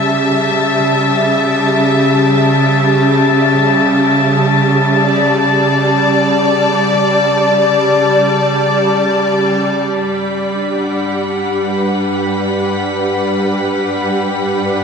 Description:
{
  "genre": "ambient",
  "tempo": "free time",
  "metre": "none",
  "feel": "none",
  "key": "G lydian",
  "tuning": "A4 = 440 Hz",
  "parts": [
    { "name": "rich studio string section", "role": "sustained chords", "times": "0.0-14.8 s", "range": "C#3 to A5", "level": "-12 LUFS", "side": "equal", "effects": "low-pass filter" },
    { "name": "warm studio violin section", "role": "texture", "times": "0.0-14.8 s", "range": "A5 to B6", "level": "-18 LUFS", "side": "left 4 dB", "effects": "none" },
    { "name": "clear studio cello section", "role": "bass", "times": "9.9-14.8 s", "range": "G2", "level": "-31 LUFS", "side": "right 1 dB", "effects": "none" },
    { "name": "analog drone", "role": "drone", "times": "11.0-14.8 s", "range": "G3 to G4", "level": "-23 LUFS", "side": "right 1 dB", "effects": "chorus" }
  ],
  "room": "wet shimmer reverb, RT60 6.8 s",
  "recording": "none",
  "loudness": "-11 LUFS",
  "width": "side -6 dB against mid",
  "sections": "0.0-10.0 A section; 10.0-14.8 B section",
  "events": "fade-in on cello section 10.0-14.8",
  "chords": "0.0 D5; 10.0 Gmaj7",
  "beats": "free time"
}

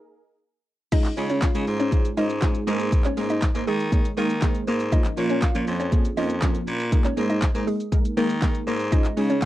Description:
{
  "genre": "dance-pop",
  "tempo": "120 BPM",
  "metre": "4/4",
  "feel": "straight",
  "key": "Db major",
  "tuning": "A4 = 443 Hz",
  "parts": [
    { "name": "wide unison pluck", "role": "accompaniment", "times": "0.0-9.4 s", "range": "F3 to Db5", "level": "-27 LUFS", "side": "right 2 dB", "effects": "sidechain pumping" },
    { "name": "hollow square pluck", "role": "melody", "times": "0.9-9.5 s", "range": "Ab3 to F5", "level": "-28 LUFS", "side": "left 1 dB", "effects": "chorus, sidechain pumping, slapback echo" },
    { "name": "pop drum kit", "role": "drums", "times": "0.9-9.5 s", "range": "crash cymbal, handclaps, hi-hat, kick drum, shaker, snare drum", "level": "-22 LUFS", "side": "equal", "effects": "none" },
    { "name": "raspy baritone saxophone", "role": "bass", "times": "1.2-9.5 s", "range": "F2 to Eb3", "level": "-28 LUFS", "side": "equal", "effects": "sidechain pumping" }
  ],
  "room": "little or no reverb",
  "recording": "dry, close 1970s-style studio recording, high-pass filter",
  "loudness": "-20 LUFS",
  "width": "side -14 dB against mid",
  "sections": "0.9-9.5 A section",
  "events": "break 0.0-0.9; drop 0.9-9.5",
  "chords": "0.0 Absus2; 0.9 Dbadd9; 2.7 Absus2; 4.9 Bbm; 6.9 Absus2; 8.9 Dbadd9",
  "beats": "0.42 | 0.92 1.42 1.92 2.42 | 2.92 3.42 3.92 4.42 | 4.92 5.42 5.92 6.42 | 6.92 7.42 7.92 8.42 | 8.92 9.42"
}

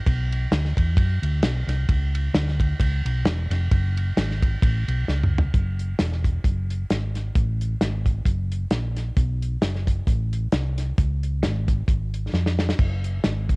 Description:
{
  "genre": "uptempo gospel",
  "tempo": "132 BPM",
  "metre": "4/4",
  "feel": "swing 55% on 8ths",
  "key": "unclear",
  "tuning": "A4 = 440 Hz",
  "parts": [
    { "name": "hollow-body short-scale fingered electric bass", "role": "bass", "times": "0.1-13.6 s", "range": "E1 to F#2", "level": "-23 LUFS", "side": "equal", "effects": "none" },
    { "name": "warm soul drum kit", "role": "drums", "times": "0.1-13.6 s", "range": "crash cymbal, hi-hat, kick drum, ride cymbal, snare drum, toms", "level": "-23 LUFS", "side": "equal", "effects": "cassette tape" }
  ],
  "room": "little or no reverb",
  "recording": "home recording on cassette",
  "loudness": "-21 LUFS",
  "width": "side -30 dB against mid",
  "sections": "0.0-5.5 A section; 5.5-13.6 B section",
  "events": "drum fill 5.1-5.5, 12.3-12.8",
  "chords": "none",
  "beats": "| 0.06 0.52 0.98 1.43 | 1.89 2.35 2.80 3.26 | 3.71 4.17 4.62 5.08 | 5.54 5.99 6.45 6.90 | 7.36 7.81 8.26 8.72 | 9.17 9.62 10.08 10.53 | 10.98 11.44 11.89 12.34 | 12.80 13.25"
}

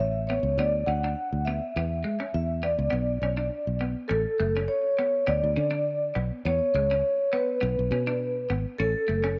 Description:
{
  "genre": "highlife guitar band",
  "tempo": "102 BPM",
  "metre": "4/4",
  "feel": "straight",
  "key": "A major",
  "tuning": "A4 = 440 Hz",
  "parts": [
    { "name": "vibraphone with medium mallets", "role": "melody", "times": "0.0-9.3 s", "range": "A4 to F#5", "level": "-29 LUFS", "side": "equal", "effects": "slapback echo" },
    { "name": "clean electric guitar", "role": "accompaniment", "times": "0.0-9.4 s", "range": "G#3 to D4", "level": "-37 LUFS", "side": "equal", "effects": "analog chorus" },
    { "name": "fingered electric bass", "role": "bass", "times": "0.0-9.4 s", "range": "F#1 to D3", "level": "-31 LUFS", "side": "equal", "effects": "none" }
  ],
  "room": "moderate plate reverb, RT60 2.7 s",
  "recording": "nothing above 7.7 kHz",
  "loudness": "-27 LUFS",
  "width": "mono",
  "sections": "0.0-4.1 A section; 4.1-9.4 B section",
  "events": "none",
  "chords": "0.0 A; 0.6 D6; 1.7 E5; 2.9 Bm; 4.1 A; 5.3 Bm; 6.4 N.C.; 7.6 Bm; 8.8 A",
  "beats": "0.57 1.16 | 1.75 2.34 2.92 3.51 | 4.10 4.69 5.27 5.86 | 6.45 7.03 7.62 8.21 | 8.79 9.38"
}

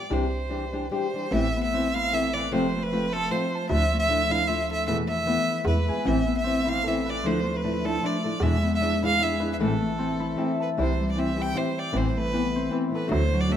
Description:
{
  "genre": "mexican folk, mariachi",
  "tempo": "153 BPM",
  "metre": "3/4",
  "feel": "swing 55% on 8ths",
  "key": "A minor",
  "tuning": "A4 = 439 Hz",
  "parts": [
    { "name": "clear violin", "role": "melody", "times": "0.0-13.6 s", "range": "A4 to G5", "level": "-28 LUFS", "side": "right 1 dB", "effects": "none" },
    { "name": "nylon-string guitar", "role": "accompaniment", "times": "0.0-13.6 s", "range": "E2 to G4", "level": "-28 LUFS", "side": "left 1 dB", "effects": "none" },
    { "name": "hollow knocking FM bass", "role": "bass", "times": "0.1-13.6 s", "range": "F1 to E2", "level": "-29 LUFS", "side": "right 1 dB", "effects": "none" },
    { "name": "Celtic harp", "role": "arpeggios", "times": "1.3-13.6 s", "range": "D3 to A5", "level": "-28 LUFS", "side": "left 2 dB", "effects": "none" }
  ],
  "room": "moderate recital hall reverb, RT60 1.6 s",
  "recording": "none",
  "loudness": "-23 LUFS",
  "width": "side -9 dB against mid",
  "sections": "0.0-1.3 A section; 1.3-10.8 B section; 10.8-13.6 A section",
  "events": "none",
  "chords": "0.1 Cadd9; 1.3 Amadd9; 2.5 F; 3.7 Dmadd9; 4.9 Esus4; 5.7 E; 6.1 Amadd9; 7.3 Dmadd9; 8.4 E7; 9.6 Am; 10.8 C; 11.9 Amadd9",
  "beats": "| 0.12 0.52 0.93 | 1.34 1.74 2.14 | 2.53 2.93 3.32 | 3.71 4.10 4.49 | 4.88 5.27 5.67 | 6.07 6.46 6.86 | 7.25 7.64 8.03 | 8.42 8.81 9.19 | 9.58 9.97 10.37 | 10.78 11.17 11.56 | 11.95 12.33 12.72 | 13.11 13.50"
}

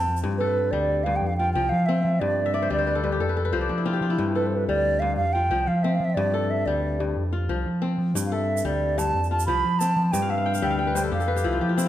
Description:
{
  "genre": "west african traditional, West African string and xylophone music",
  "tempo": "121 BPM (dotted quarters)",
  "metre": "12/8",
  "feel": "straight",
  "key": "G mixolydian",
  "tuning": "A4 = 440 Hz",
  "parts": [
    { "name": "wooden flute", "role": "melody", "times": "0.0-11.7 s", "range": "B4 to B5", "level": "-25 LUFS", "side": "right 2 dB", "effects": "none" },
    { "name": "kora", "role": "arpeggios", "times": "0.0-11.9 s", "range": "G2 to G5", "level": "-27 LUFS", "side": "left 5 dB", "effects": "none" },
    { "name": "overdriven picked electric bass", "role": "bass", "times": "0.0-11.9 s", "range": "C2 to F3", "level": "-26 LUFS", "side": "right 1 dB", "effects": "none" },
    { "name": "egg shaker", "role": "percussion", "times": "0.2, 8.2-11.9 s", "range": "none", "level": "-36 LUFS", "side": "right 9 dB", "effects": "none" }
  ],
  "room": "moderate recital hall reverb, RT60 1.7 s",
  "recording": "none",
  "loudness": "-21 LUFS",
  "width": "side -12 dB against mid",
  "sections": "0.2-11.9 A section",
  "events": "kora fill 2.5-4.2, 10.2-11.9",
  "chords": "0.2 G; 1.2 F5; 2.2 G5; 3.2 F5; 4.2 G5; 5.2 F5; 6.2 G5; 7.2 F5; 8.2 G5; 9.1 F; 10.1 G5; 11.1 F5",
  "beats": "| 0.24 0.73 1.23 1.72 | 2.22 2.71 3.21 3.70 | 4.20 4.69 5.18 5.68 | 6.17 6.67 7.17 7.66 | 8.15 8.65 9.14 9.64 | 10.13 10.63 11.12 11.62"
}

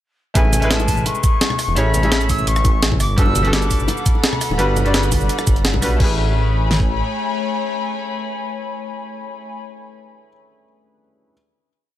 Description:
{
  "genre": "liquid drum and bass",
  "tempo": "170 BPM",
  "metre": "4/4",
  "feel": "straight",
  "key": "A major",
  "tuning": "A4 = 435 Hz",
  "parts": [
    { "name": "bright grand piano", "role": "accompaniment", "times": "0.3-11.3 s", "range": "G3 to E5", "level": "-24 LUFS", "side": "equal", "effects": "ping-pong delay" },
    { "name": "jazz flute", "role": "melody", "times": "0.4-4.2 s", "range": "G#5 to E6", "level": "-23 LUFS", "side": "left 2 dB", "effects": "tape echo" },
    { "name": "dark detuned saw bass", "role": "bass", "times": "0.4-7.0 s", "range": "D1 to B1", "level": "-19 LUFS", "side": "equal", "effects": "none" },
    { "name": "breakbeat sampler-style drum kit", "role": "drums", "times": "0.4-6.1 s", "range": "crash cymbal, hi-hat, rim click, shaker, snare drum", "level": "-21 LUFS", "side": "right 1 dB", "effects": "none" },
    { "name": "pop drum kit", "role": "drums", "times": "0.4-6.9 s", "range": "kick drum, snare drum", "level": "-18 LUFS", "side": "equal", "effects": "none" },
    { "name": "bongos and congas", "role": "percussion", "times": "0.4-5.8 s", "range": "none", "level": "-28 LUFS", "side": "left 4 dB", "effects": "none" },
    { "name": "airy breathy pad", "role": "sustained chords", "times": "3.6-9.6 s", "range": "A3 to B5", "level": "-25 LUFS", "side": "left 3 dB", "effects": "chorus, sidechain pumping" }
  ],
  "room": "digital ambience",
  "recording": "none",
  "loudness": "-15 LUFS",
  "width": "side -12 dB against mid",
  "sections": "0.4-6.0 drop; 6.0-8.8 final chord",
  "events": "drop 0.4-6.0",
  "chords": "0.4 Amaj9; 3.0 Gmaj9; 6.0 Amaj9",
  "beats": "| 0.35 0.71 1.06 1.41 | 1.76 2.12 2.47 2.82 | 3.18 3.53 3.88 4.24 | 4.59 4.94 5.29 5.65 | 6.00 6.35 6.71 7.06 | 7.41 7.76 8.12 8.47"
}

